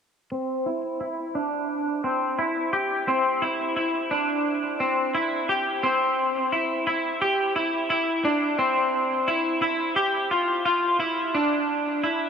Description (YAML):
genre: dream pop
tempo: 87 BPM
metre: 4/4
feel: straight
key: unclear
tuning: A4 = 440 Hz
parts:
  - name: clean electric guitar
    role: solo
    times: 0.3-12.3 s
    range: C4 to G4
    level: -22 LUFS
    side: equal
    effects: analog chorus, low-pass filter, digital delay
room: wet huge ambient reverb, RT60 6.5 s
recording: none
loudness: -22 LUFS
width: side -7 dB against mid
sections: 0.3-5.8 A section; 5.8-12.3 B section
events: filter sweep on clean electric guitar 0.3-5.8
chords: none